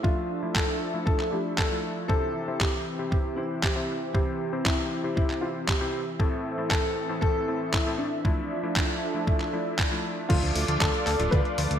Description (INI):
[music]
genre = italo disco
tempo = 117 BPM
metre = 4/4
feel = straight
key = D minor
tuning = A4 = 440 Hz
[part]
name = dark baby grand piano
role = melody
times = 0.0-11.8 s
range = D4 to B4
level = -31 LUFS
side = left 1 dB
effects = digital delay
[part]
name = warm analog pad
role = sustained chords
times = 0.0-11.8 s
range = E3 to D6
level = -32 LUFS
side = right 1 dB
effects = wide subtle chorus
[part]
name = bright electric grand piano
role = stabs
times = 0.0-11.8 s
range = A2 to E5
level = -33 LUFS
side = left 4 dB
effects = low-pass filter
[part]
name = electronic kick drum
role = drums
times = 0.0-11.4 s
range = none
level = -26 LUFS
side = equal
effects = none
[part]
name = detuned 8-bit digital drum machine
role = drums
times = 0.6-11.8 s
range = crash cymbal, handclaps, hi-hat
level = -31 LUFS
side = equal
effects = none
[part]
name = fat analog bass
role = bass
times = 10.3-11.8 s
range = D1 to D2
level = -27 LUFS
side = equal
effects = none
[sound]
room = moderate lush hall reverb, RT60 1.7 s, digital ambience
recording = bright 1980s-style digital production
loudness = -24 LUFS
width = side -9 dB against mid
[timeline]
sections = 0.0-10.3 A section; 10.3-11.8 B section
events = filter sweep on analog synth pad 0.0-10.3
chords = 0.0 Dmadd9; 2.1 C; 6.2 Am; 8.2 Dmadd9; 10.3 Dm